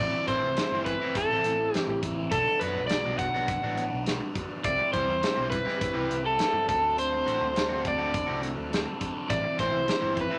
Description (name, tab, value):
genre	indie rock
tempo	103 BPM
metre	4/4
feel	straight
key	A dorian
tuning	A4 = 443 Hz
part	crunchy overdriven guitar	melody	0.0-10.4 s	A4 to F#5	-29 LUFS	equal	none
part	overdriven semi-hollow guitar	riff	0.0-10.4 s	E3 to A4	-36 LUFS	equal	phaser
part	overdriven picked electric bass	bass	0.0-10.3 s	G1 to G2	-40 LUFS	equal	none
part	crunchy overdriven guitar	riff	0.1-10.4 s	D3 to F#4	-39 LUFS	equal	none
part	big rock drum kit	drums	0.3-10.3 s	hi-hat, kick drum, snare drum	-35 LUFS	equal	none
room	moderate large studio reverb, RT60 0.9 s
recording	none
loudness	-28 LUFS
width	mono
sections	0.0-10.4 A section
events	none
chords	0.0 Am; 2.3 Bm; 4.6 Cmaj7; 6.7 D7; 9.3 Am7